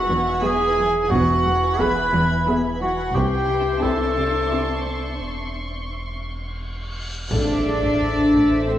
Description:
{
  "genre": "cinematic, suspense film score",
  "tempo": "88 BPM",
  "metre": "3/4",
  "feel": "straight",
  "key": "unclear",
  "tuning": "A4 = 440 Hz",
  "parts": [
    { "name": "warm symphonic violin section", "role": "melody", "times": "0.0-8.8 s", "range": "C5 to E5", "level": "-32 LUFS", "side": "right 2 dB", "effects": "none" },
    { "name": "clear clarinet", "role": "second line", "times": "0.0-5.2 s", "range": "F#4 to B4", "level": "-22 LUFS", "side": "equal", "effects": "none" },
    { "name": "warm symphonic violin section", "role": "second line", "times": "0.0-8.8 s", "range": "C5 to B5", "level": "-28 LUFS", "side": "equal", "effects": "none" },
    { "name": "dark studio viola section", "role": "accompaniment", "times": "0.0-8.8 s", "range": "B3 to A4", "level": "-27 LUFS", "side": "left 1 dB", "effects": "none" },
    { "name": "twinkling granular texture", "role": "sustained chords", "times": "0.0-8.8 s", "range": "C4 to G#5", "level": "-31 LUFS", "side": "left 1 dB", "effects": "built-in reverb" },
    { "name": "sub bass with octave", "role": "drone", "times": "0.0-8.8 s", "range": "E1 to C2", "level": "-31 LUFS", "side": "equal", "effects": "none" },
    { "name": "small celesta", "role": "texture", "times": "0.0-8.8 s", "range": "G#4 to B5", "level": "-32 LUFS", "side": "left 2 dB", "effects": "none" },
    { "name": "warm symphonic cello section", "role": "riff", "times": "0.1-8.8 s", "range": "E2 to C4", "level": "-27 LUFS", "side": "equal", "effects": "none" },
    { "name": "dark symphonic double bass section", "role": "bass", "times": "1.1-3.7, 7.3-8.8 s", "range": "E1 to C2", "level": "-27 LUFS", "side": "equal", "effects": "none" },
    { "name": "warm symphonic cello section", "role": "bass", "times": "1.1-3.7, 7.3-8.8 s", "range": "C2 to D4", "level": "-22 LUFS", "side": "equal", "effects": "none" },
    { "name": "solo taiko drums", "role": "drums", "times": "1.1-8.8 s", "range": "none", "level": "-33 LUFS", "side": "equal", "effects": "none" },
    { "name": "dark studio violin section", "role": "texture", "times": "3.2-8.8 s", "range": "C6 to B6", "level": "-36 LUFS", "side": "equal", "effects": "none" },
    { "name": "cymbal swell and impact", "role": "sound effects", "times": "6.7-8.8 s", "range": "none", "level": "-31 LUFS", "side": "equal", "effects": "none" },
    { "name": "mellow French horn section", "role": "sustained chords", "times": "7.3-8.8 s", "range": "C4 to D4", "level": "-24 LUFS", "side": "left 2 dB", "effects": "none" },
    { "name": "timpani", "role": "percussion", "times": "7.3-8.3 s", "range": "A2", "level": "-31 LUFS", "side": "equal", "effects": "none" }
  ],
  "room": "wet stone room reverb, RT60 1.2 s",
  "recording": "worn, warbling old tape, cassette tape, warbly pitch drift",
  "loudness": "-18 LUFS",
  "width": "side -12 dB against mid",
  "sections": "0.0-7.3 A section; 7.3-8.8 B section",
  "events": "break 5.2-7.3; cymbal swell 6.7-7.3; drum fill 6.8-7.3; impact 7.3-8.8",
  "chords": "0.0 Eadd9; 3.1 Cadd9; 5.2 C#mmaj7/E; 7.3 Am"
}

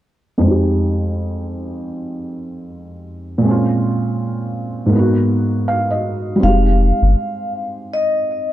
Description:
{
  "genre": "hip hop",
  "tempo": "80 BPM",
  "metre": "4/4",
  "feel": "swing 58% on 16ths",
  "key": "F minor",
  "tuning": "A4 = 440 Hz",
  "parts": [
    { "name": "felt-muted upright piano", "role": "accompaniment", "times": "0.4-8.5 s", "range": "F2 to F5", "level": "-17 LUFS", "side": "right 1 dB", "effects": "cassette tape, low-pass filter" },
    { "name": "vibraphone with soft mallets", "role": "melody", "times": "6.4-8.5 s", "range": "Eb5 to F5", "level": "-19 LUFS", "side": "left 1 dB", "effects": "low-pass filter, analog delay" },
    { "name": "soft dub sub bass", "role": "bass", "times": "6.4-7.2 s", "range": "F1 to G1", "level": "-14 LUFS", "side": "left 1 dB", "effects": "none" }
  ],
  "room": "light reverb",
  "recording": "dark, warm production",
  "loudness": "-15 LUFS",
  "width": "side -13 dB against mid",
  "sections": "0.4-6.4 A section; 6.4-8.5 B section",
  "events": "filter sweep on felt piano 0.4-6.4; felt piano fill 5.3-6.4",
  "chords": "0.4 Fm9; 3.4 Bbm9; 4.9 Abm9; 6.4 Fm9"
}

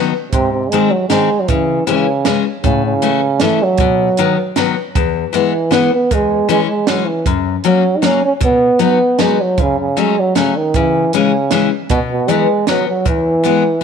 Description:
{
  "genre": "alpine folk, alpine dance band",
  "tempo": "156 BPM",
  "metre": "3/4",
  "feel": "straight",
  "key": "unclear",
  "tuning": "A4 = 439 Hz",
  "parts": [
    { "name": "picked steel-string acoustic guitar", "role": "accompaniment", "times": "0.0-13.8 s", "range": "E2 to D#4", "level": "-16 LUFS", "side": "left 11 dB", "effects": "none" },
    { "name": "clear euphonium", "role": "melody", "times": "0.3-13.8 s", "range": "B2 to D#4", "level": "-15 LUFS", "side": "right 3 dB", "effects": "none" },
    { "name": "compact cocktail drum kit", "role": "drums", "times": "0.3-13.5 s", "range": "hi-hat, kick drum, snare drum", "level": "-19 LUFS", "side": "right 4 dB", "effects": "none" }
  ],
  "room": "moderate plate reverb, RT60 1.7 s, small room ambience",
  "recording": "1960s-style stereo",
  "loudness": "-12 LUFS",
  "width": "side -6 dB against mid",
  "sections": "0.0-13.8 A section",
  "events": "none",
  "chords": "0.3 G#; 1.5 C#m; 2.6 A; 3.8 B; 4.9 E; 6.1 C#m/E; 7.3 F#; 8.4 B; 9.6 F#m; 10.7 C#m; 11.9 Bsus4; 12.7 B; 13.1 E"
}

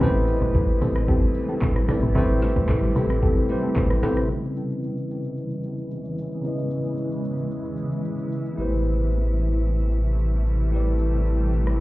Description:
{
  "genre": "amapiano",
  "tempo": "112 BPM",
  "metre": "4/4",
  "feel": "straight",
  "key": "unclear",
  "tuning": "A4 = 436 Hz",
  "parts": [
    { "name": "bell-like tine electric piano", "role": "accompaniment", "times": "0.0-11.8 s", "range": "C#3 to D#5", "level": "-27 LUFS", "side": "equal", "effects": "medium stereo tremolo, low-pass filter" },
    { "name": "granular cloud pad", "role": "sustained chords", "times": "0.0-11.8 s", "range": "C3 to E4", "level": "-30 LUFS", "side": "equal", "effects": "built-in reverb, sidechain pumping, low-pass filter" },
    { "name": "soft round pluck", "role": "stabs", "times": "0.0-4.1 s", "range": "C4 to A4", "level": "-29 LUFS", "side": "left 3 dB", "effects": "chorus, ping-pong delay" },
    { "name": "woody log drum bass", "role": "bass", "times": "0.0-4.3 s", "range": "G#1 to A1", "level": "-24 LUFS", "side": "equal", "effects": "none" },
    { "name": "afro-pop drum kit", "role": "drums", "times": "0.0-11.8 s", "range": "handclaps, hi-hat, kick drum, rim click, shaker, snare drum, toms", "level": "-24 LUFS", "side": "equal", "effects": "none" },
    { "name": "congas and bongos", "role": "percussion", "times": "0.0-4.2 s", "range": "none", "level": "-31 LUFS", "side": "left 1 dB", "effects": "none" },
    { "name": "warm sub bass", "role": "bass", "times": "8.6-11.8 s", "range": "A1", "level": "-21 LUFS", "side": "equal", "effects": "none" }
  ],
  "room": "light reverb",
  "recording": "heard muffled through a wall, club reverb, EQ",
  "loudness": "-21 LUFS",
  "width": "side -18 dB against mid",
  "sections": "0.0-4.3 A section; 4.3-11.8 B section",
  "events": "drop 0.0-4.3; filter sweep 4.3-11.8",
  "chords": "0.0 Am7; 4.3 C#m7; 8.6 Am7"
}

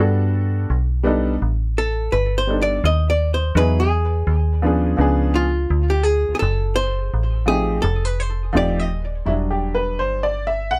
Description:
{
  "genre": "hip hop",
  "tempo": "84 BPM",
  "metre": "4/4",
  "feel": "swing 61% on 16ths",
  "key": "unclear",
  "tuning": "A4 = 440 Hz",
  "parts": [
    { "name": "warm upright piano", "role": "accompaniment", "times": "0.0-10.8 s", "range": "F3 to F#5", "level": "-23 LUFS", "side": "equal", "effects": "none" },
    { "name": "metallic FM bass", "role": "bass", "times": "0.0-10.8 s", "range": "Eb1 to G2", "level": "-22 LUFS", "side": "equal", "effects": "none" },
    { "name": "archtop guitar, miked and amplified", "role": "melody", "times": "1.8-9.1 s", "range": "E#4 to D#5", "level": "-25 LUFS", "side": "equal", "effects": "analog delay" }
  ],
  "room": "light reverb",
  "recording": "none",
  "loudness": "-20 LUFS",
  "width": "mono",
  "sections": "0.0-9.3 A section; 9.3-10.8 A section",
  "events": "hollow-body jazz guitar solo 0.0-9.3; upright piano solo 9.3-10.8",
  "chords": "0.0 Gmaj7; 0.7 B7alt; 3.6 Emaj9; 5.0 C#7b9; 6.4 F#dim; 7.8 F9; 9.3 Em9"
}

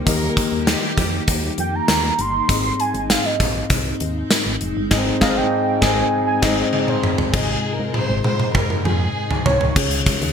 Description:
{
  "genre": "1980s-style pop",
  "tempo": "99 BPM",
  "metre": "4/4",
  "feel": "straight",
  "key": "unclear",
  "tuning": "A4 = 440 Hz",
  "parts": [
    { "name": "tine electric piano", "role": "accompaniment", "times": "0.0-10.3 s", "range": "Ab2 to Eb5", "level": "-23 LUFS", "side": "left 3 dB", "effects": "lush chorus" },
    { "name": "granular cloud pad", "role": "sustained chords", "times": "0.0-10.3 s", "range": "C3 to F4", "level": "-30 LUFS", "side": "equal", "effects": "built-in reverb, wide subtle chorus" },
    { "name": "solid FM bass", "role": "bass", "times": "0.0-10.3 s", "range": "F1 to Ab2", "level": "-26 LUFS", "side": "equal", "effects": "none" },
    { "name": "warm chamber violin section", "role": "second line", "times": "0.1-1.4, 7.3-9.7 s", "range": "G4 to C5", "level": "-28 LUFS", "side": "equal", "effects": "ping-pong delay" },
    { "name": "gated 80s drum kit", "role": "drums", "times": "0.1-10.3 s", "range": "crash cymbal, hi-hat, kick drum, snare drum, tambourine, toms", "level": "-19 LUFS", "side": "equal", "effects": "gated reverb" },
    { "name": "warm velvety synth lead", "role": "melody", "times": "1.6-10.0 s", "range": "C5 to C6", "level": "-24 LUFS", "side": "right 3 dB", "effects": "chorus, ping-pong delay" }
  ],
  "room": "moderate plate reverb, RT60 1.9 s, small room ambience",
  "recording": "bright 1980s-style digital production",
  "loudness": "-17 LUFS",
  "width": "side -7 dB against mid",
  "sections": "0.0-7.3 A section; 7.3-9.8 B section",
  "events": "soft synth lead solo 0.0-7.3; band accent 4.9-7.3; drum fill 6.7-7.3, 7.3-9.8",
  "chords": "0.0 Eb; 2.5 Ab; 9.8 Db"
}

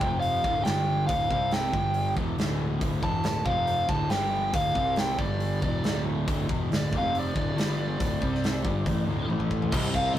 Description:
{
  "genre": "hard rock",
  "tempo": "139 BPM",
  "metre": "4/4",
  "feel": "straight",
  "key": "D minor",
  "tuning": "A4 = 442 Hz",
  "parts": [
    { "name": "biting lead guitar", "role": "melody", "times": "0.0-10.2 s", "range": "D5 to A5", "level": "-28 LUFS", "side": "equal", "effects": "overdrive" },
    { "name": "overdriven semi-hollow guitar", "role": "riff", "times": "0.0-10.2 s", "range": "D2 to C4", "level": "-33 LUFS", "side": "left 3 dB", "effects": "none" },
    { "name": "sludgy distorted guitar", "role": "riff", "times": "0.0-10.2 s", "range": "D2 to C4", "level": "-35 LUFS", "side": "right 4 dB", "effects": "overdrive" },
    { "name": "fuzz picked electric bass", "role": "bass", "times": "0.0-10.2 s", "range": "D1 to C2", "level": "-30 LUFS", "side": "equal", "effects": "overdrive" },
    { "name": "big rock drum kit", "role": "drums", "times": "0.0-10.2 s", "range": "crash cymbal, hi-hat, kick drum, snare drum, toms", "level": "-30 LUFS", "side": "equal", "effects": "none" }
  ],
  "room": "light reverb",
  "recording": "rough rehearsal-room recording, warm saturation",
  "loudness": "-24 LUFS",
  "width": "side -12 dB against mid",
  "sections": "0.0-9.7 A section",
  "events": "drum fill 9.3-9.7",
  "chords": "0.0 F5; 0.5 Dm; 0.7 G5; 1.1 Dm; 1.3 C5; 1.7 G5; 2.2 D5; 3.5 F5; 3.9 D5; 4.1 G5; 4.6 Dm; 4.8 C5; 5.2 G5; 5.6 D5; 6.9 F5; 7.4 D5; 7.6 G5; 8.0 D5; 8.2 C5; 8.6 D5; 9.3 A5"
}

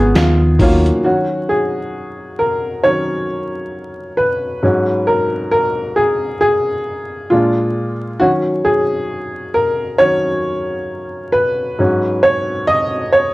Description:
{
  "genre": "lo-fi hip hop",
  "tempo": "67 BPM",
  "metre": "4/4",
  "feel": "swing 56% on 16ths",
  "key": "Eb minor",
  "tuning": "A4 = 439 Hz",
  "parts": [
    { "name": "warm upright piano", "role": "accompaniment", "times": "0.0-13.3 s", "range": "Ab2 to Eb5", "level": "-14 LUFS", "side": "equal", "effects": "cassette tape" },
    { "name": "deep dub fingered electric bass", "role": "bass", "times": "0.0-0.9 s", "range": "Ab1 to Eb2", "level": "-13 LUFS", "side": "equal", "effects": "none" },
    { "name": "dusty soul sampler-style drum kit", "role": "drums", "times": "0.2-1.0 s", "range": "hi-hat, kick drum, snare drum", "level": "-16 LUFS", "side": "equal", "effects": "none" }
  ],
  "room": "wet studio ambience, RT60 0.5 s",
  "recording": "vinyl crackle",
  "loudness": "-14 LUFS",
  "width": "side -19 dB against mid",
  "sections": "0.0-1.0 A section; 1.0-13.3 B section",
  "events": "upright piano solo 1.0-13.3",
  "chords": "0.2 Ebm9; 1.0 Ebm7; 4.6 Ab7sus4; 7.3 Bb7; 8.2 Ebm7; 11.8 Ab7sus4"
}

